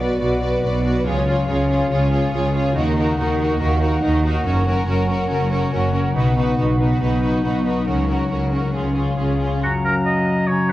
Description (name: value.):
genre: cinematic.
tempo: 140 BPM.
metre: 4/4.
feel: straight.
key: F# major.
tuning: A4 = 440 Hz.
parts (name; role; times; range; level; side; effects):
clear symphonic violin section; melody; 0.0-9.6 s; G#4 to D5; -26 LUFS; left 2 dB; none.
clear studio violin section; second line; 0.0-9.6 s; E#4 to B4; -27 LUFS; right 1 dB; none.
rich symphonic viola section; accompaniment; 0.0-9.6 s; C#4 to F#4; -26 LUFS; right 1 dB; none.
concert harp; arpeggios; 0.0-10.7 s; F#2 to B4; -24 LUFS; left 4 dB; none.
rich symphonic cello section; bass; 0.0-9.6 s; F#2 to D#3; -24 LUFS; right 1 dB; none.
rich symphonic double bass section; bass; 0.0-9.6 s; F#1 to D#2; -23 LUFS; right 1 dB; none.
clear oboe; second line; 9.6-10.7 s; F#4 to D#5; -21 LUFS; right 1 dB; none.
mellow clarinet; second line; 9.6-10.7 s; C#4; -28 LUFS; right 1 dB; none.
silver concert flute; second line; 9.6-10.7 s; A#5; -26 LUFS; equal; none.
mellow French horn section; sustained chords; 9.6-10.7 s; F#3; -21 LUFS; left 1 dB; none.
room: wet scoring stage reverb, RT60 1.6 s.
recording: worn, warbling old tape, cassette tape, warbly pitch drift.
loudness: -17 LUFS.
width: side -15 dB against mid.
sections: 0.0-9.6 A section; 9.6-10.7 B section.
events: build-up 0.0-9.6.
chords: 0.0 Bm; 1.1 C#; 2.8 D#m; 4.5 F#; 6.2 B; 7.9 F#/C#; 8.7 C#; 9.6 F#.